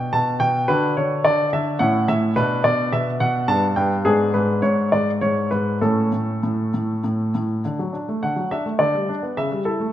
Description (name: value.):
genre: classical-period piano sonatina.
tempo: 98-109 BPM.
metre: 3/4.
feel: rubato.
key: D major.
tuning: A4 = 442 Hz.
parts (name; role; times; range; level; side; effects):
clear baby grand piano; solo; 0.0-9.9 s; G2 to A5; -18 LUFS; equal; none.
room: moderate recital hall reverb, RT60 1.9 s.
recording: none.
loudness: -18 LUFS.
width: side -12 dB against mid.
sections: 0.0-7.6 A section; 7.6-9.9 B section.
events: none.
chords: 0.0 G/B; 0.7 D; 1.8 A; 2.4 Bm; 3.5 Gadd9; 4.1 G#dim; 5.8 A; 7.6 D; 8.8 G/D; 9.4 A7/C#.